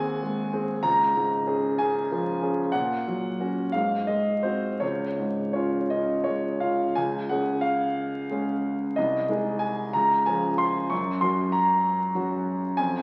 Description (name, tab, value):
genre	classical, romantic character piece for solo piano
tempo	54-66 BPM (dotted quarters)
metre	6/8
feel	rubato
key	Db major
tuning	A4 = 441 Hz
part	clear concert grand piano	solo	0.0-13.0 s	C2 to Db6	-26 LUFS	equal	none
room	wet scoring stage reverb, RT60 1.8 s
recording	very old 78 rpm record, vinyl crackle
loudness	-26 LUFS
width	mono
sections	0.0-7.0 A section; 7.0-13.0 B section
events	none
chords	0.0 Ab7/Eb; 0.8 Db; 2.7 Gb/Bb; 3.7 Ab7; 4.8 Db; 9.0 Ab/C; 9.9 Db; 10.9 Gb